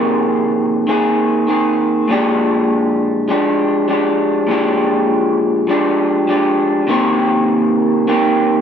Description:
indie pop; 100 BPM; 4/4; straight; A4 = 439 Hz
electric guitar through a small old amp; solo; 0.0-8.6 s; F2 to Ab4; -13 LUFS; equal; lush chorus, vibrato effect
moderate studio reverb, RT60 0.6 s; dark, warm production; -13 LUFS; side -8 dB against mid
0.0-6.9 A section; 6.9-8.6 B section
0.0 Fm7; 2.1 Bb6; 6.9 Cm7

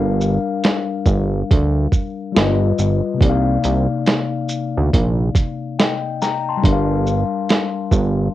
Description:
lo-fi hip hop; 70 BPM; 4/4; swing 63% on 16ths; G minor; A4 = 440 Hz
mellow tine electric piano; accompaniment; 0.0-8.3 s; C3 to C6; -21 LUFS; left 6 dB; cassette tape, low-pass filter
fat analog bass; bass; 0.0-8.3 s; G1 to D2; -17 LUFS; right 2 dB
lo-fi sampler-style drum kit; drums; 0.2-8.2 s; hi-hat, kick drum, shaker, snare drum; -16 LUFS; right 1 dB; vintage 12-bit sampler grit, cassette tape
light reverb; home recording on cassette; -16 LUFS; side -14 dB against mid
0.0-8.3 A section
0.0 Gm7; 2.4 G7b13; 3.2 Cm11; 6.6 Gm7

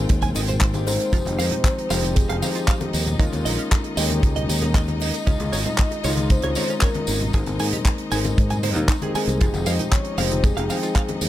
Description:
nu-disco, nu disco; 116 BPM; 4/4; straight; F minor; A4 = 440 Hz
dark baby grand piano; accompaniment; 0.0-11.3 s; Eb3 to G5; -27 LUFS; left 2 dB; vintage 12-bit sampler grit, sidechain pumping
bright studio string section; sustained chords; 0.0-11.3 s; Eb4 to G5; -35 LUFS; left 4 dB; sidechain pumping
fingered electric bass; bass; 0.0-11.3 s; F1 to Ab2; -24 LUFS; equal
damped 70s drum kit; drums; 0.1-11.3 s; handclaps, hi-hat, tambourine; -27 LUFS; right 2 dB
kick drum; drums; 0.1-11.1 s; -19 LUFS; equal
cabasa, congas and bongos; percussion; 0.1-11.3 s; -32 LUFS; left 3 dB
direct-recorded clean electric guitar; riff; 0.2-11.0 s; C4 to Ab5; -31 LUFS; right 5 dB; analog chorus
soft octave-layered synth lead; melody; 0.9-11.3 s; G4 to Eb5; -29 LUFS; left 1 dB; chorus, tape echo
small room reverb; -19 LUFS; side -13 dB against mid
0.0-11.3 A section
0.0 Abmaj9; 1.1 Fm9; 3.2 Eb9sus4; 5.3 Dbmaj9; 7.3 Abadd9; 9.4 Fm9

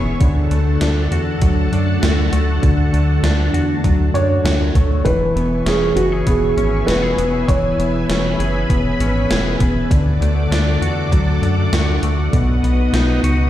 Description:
dream pop; 99 BPM; 4/4; straight; E mixolydian; A4 = 440 Hz
string machine, cellos; sustained chords; 0.0-13.5 s; D4 to D#6; -24 LUFS; equal; ensemble chorus
semi-hollow electric guitar; arpeggios; 0.0-13.5 s; B2 to G#4; -20 LUFS; left 3 dB; analog chorus, tape echo
round analog bass; bass; 0.0-13.5 s; E1 to F#2; -18 LUFS; equal
gated 80s digital drum machine; drums; 0.2-13.4 s; hi-hat, kick drum, snare drum; -19 LUFS; equal; gated reverb, gated reverb snare, overdrive
felt-muted upright piano; melody; 4.1-9.3 s; F#4 to C#5; -20 LUFS; right 2 dB; tape echo
light reverb, digital ambience; played on a big sound system in a bare room, stone room reverb; -14 LUFS; side -12 dB against mid
0.0-13.5 A section
0.2 D; 5.1 E6; 9.9 D; 12.3 B

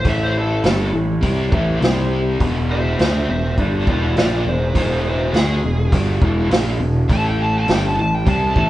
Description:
blues rock power trio and southern rock; 102 BPM; 4/4; straight; A4 = 437 Hz
bluesy overdriven lead guitar; melody; 0.0-8.7 s; G#4 to A5; -23 LUFS; right 1 dB; distortion
percussive tonewheel organ; sustained chords; 0.0-8.7 s; C4 to D5; -31 LUFS; right 2 dB
overdriven electric guitar; riff; 0.0-8.7 s; E2 to D4; -22 LUFS; left 1 dB; harmonic tremolo
fuzz picked electric bass; bass; 0.0-8.7 s; E1 to D2; -20 LUFS; equal; overdrive
vintage drum kit; drums; 0.0-8.7 s; hi-hat, kick drum, snare drum; -20 LUFS; equal; vintage 12-bit sampler grit
moderate stone room reverb, RT60 1.0 s; band playing live in one room, cassette tape; -15 LUFS; side -15 dB against mid
0.0-8.7 A section
0.0 A7; 1.8 C5; 2.4 E7; 7.1 A7

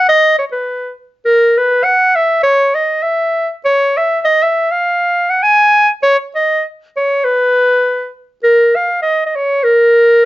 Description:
alpine folk; 101 BPM; 2/4; swing 53% on 8ths, rubato; B major; A4 = 441 Hz
warm clarinet; solo; 0.0-10.3 s; A#4 to G#5; -10 LUFS; equal
light reverb; dark, warm production, nothing above 7.6 kHz; -10 LUFS; side -16 dB against mid
0.0-8.4 A section; 8.4-10.3 B section

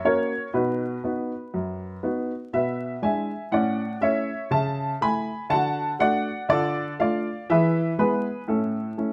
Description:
jazz, stride piano; 121 BPM; 4/4; swing 60% on 8ths; A major; A4 = 440 Hz
clear upright piano; solo; 0.0-9.1 s; F#2 to B5; -25 LUFS; equal
moderate studio reverb, RT60 0.8 s; dark, warm production, vinyl crackle; -25 LUFS; mono
0.0-9.1 A section
0.0 F#; 0.5 B; 2.5 E7/B; 3.5 A; 4.5 A/C#; 5.5 D; 6.5 Dm; 7.5 E; 8.5 A

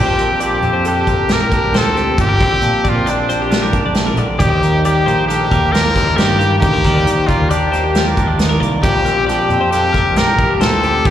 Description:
math rock and midwest emo; 135 BPM; 5/4; straight; Bb major; A4 = 440 Hz
brilliant trumpet; melody; 0.0-11.1 s; D4 to Bb4; -16 LUFS; left 2 dB; slapback echo, digital delay
twangy electric guitar; accompaniment; 0.0-11.1 s; Bb2 to G4; -20 LUFS; right 6 dB; slapback echo
twelve-string electric guitar; arpeggios; 0.0-11.1 s; G4 to D5; -22 LUFS; left 7 dB; spring reverb, slapback echo, digital delay
growling fingered electric bass; bass; 0.0-11.1 s; G1 to Eb3; -18 LUFS; equal; overdrive
soft brush drum kit; drums; 0.2-11.1 s; hi-hat, kick drum, snare drum; -18 LUFS; equal
studio reverb; live gig heard through the venue's PA, recital hall reverb; -12 LUFS; side -11 dB against mid
0.0-11.1 A section
0.0 Bb69; 4.4 Ebmaj9; 8.8 Bb69

